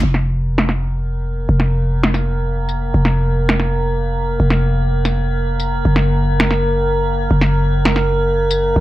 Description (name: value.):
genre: half-time drum and bass.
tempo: 165 BPM.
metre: 4/4.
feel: swing 58% on 16ths, half-time.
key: unclear.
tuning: A4 = 439 Hz.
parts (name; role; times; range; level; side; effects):
growling 808-style bass; bass; 0.0-8.8 s; F1 to Gb1; -16 LUFS; equal; none.
metallic inharmonic drone; texture; 0.8-8.8 s; Bb3 to Bb4; -21 LUFS; right 1 dB; chorus, built-in reverb.
electronic snare drum and tambourine; drums; 0.1-8.6 s; none; -18 LUFS; equal; low-pass filter on snare, low-pass filter on hats, low-pass filter on perc.
room: light reverb, digital ambience.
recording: none.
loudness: -15 LUFS.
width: side -15 dB against mid.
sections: 0.0-8.8 A section.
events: none.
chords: 0.0 Fsus4; 5.9 Gb.